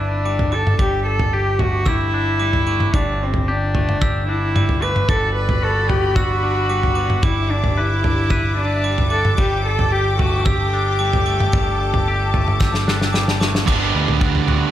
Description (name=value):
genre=post-rock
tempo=112 BPM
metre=4/4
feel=straight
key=G major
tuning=A4 = 440 Hz
part: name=warm cello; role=melody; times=0.0-13.1 s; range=C4 to B4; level=-22 LUFS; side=equal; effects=slapback echo
part: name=glockenspiel with brass mallets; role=arpeggios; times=0.0-14.2 s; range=D6 to E6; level=-29 LUFS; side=right 5 dB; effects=slapback echo
part: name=twangy electric guitar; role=arpeggios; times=0.0-14.7 s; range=G3 to B4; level=-27 LUFS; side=left 2 dB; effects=slapback echo
part: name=growling fingered electric bass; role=bass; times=0.0-14.6 s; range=G1 to D2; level=-22 LUFS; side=equal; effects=overdrive
part: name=loose indie drum kit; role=drums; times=0.4-14.6 s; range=crash cymbal, kick drum, snare drum, toms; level=-20 LUFS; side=equal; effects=none
part: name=rich studio string section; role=sustained chords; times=5.1-14.7 s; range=F#4 to D6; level=-28 LUFS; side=left 3 dB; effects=none
part: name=distorted electric guitar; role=riff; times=13.7-14.7 s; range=G2 to D4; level=-20 LUFS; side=right 10 dB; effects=overdrive
room=light reverb, small room ambience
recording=none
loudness=-16 LUFS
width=side -12 dB against mid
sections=0.0-13.7 A section; 13.7-14.7 B section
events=drum fill 12.6-13.7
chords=0.0 Em7/G; 0.8 Gsus2; 5.1 Bm/G; 7.2 Em7/G; 9.4 Gsus2; 13.7 Gmaj7